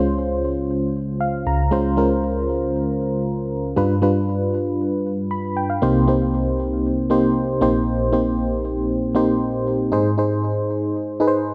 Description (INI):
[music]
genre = pop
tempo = 117 BPM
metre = 4/4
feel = straight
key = unclear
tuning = A4 = 441 Hz
[part]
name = FM electric piano with tremolo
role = solo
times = 0.0-11.5 s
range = Bb1 to B5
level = -21 LUFS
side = equal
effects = delay
[sound]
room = moderate plate reverb, RT60 3.2 s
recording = none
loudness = -21 LUFS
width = mono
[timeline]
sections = 0.0-5.8 A section; 5.8-11.5 B section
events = FM electric piano fill 0.9-1.7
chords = 0.0 Dbmaj7; 3.8 G7; 5.8 Cm7; 7.6 Eb6/Bb; 9.9 Ab